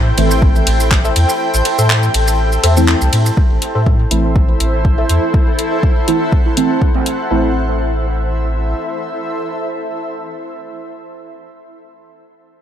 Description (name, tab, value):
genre	dub techno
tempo	122 BPM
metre	4/4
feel	swing 54% on 16ths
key	A dorian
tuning	A4 = 441 Hz
part	granular cloud pad	sustained chords	0.0-10.5 s	E4 to G5	-20 LUFS	equal	built-in reverb, sidechain pumping
part	soft dub sub bass	bass	0.0-8.7 s	A1 to A2	-15 LUFS	equal	sidechain pumping
part	deep mellow chord stab	stabs	0.2-10.5 s	E3 to E4	-20 LUFS	right 2 dB	chorus, phaser, cassette tape, sidechain pumping, dub echo
part	deep house drum kit	drums	0.2-7.2 s	handclaps, hi-hat, ride cymbal, shaker	-19 LUFS	equal	overdrive, dub echo
part	electronic kick drum	drums	0.4-6.9 s	none	-13 LUFS	equal	overdrive
part	wavetable chord stab	riff	1.0-10.5 s	A4 to E5	-25 LUFS	left 3 dB	sidechain pumping, dub echo
room	light reverb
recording	none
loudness	-12 LUFS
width	side -10 dB against mid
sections	0.0-3.4 A section; 3.4-7.3 B section; 7.3-11.2 C section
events	filter sweep on synth stab 0.0-3.4; kick drops out 1.4-3.4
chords	0.0 Am